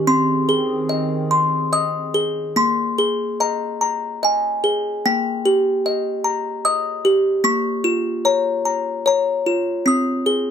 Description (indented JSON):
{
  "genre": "children's music, lullaby",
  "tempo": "74 BPM",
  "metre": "3/4",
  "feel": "rubato",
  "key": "Ab major",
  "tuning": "A4 = 440 Hz",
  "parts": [
    { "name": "music box", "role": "melody", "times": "0.0-10.5 s", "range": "Bb3 to Eb6", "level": "-17 LUFS", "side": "left 1 dB", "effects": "none" },
    { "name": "hollow soft pad", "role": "sustained chords", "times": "0.0-2.5 s", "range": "Eb3 to Ab4", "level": "-26 LUFS", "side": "right 3 dB", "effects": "chorus" }
  ],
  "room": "light reverb",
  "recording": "close, detailed microphones",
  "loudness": "-17 LUFS",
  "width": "side -8 dB against mid",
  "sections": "0.0-2.6 A section; 2.6-10.5 B section",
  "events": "none",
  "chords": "0.1 Ab; 2.6 Absus2; 5.0 Eb; 7.4 Bbm; 9.9 Ab",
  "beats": "| 0.07 0.89 1.73 | 2.56 3.40 4.23 | 5.05 5.85 6.65 | 7.45 8.25 9.06 | 9.86"
}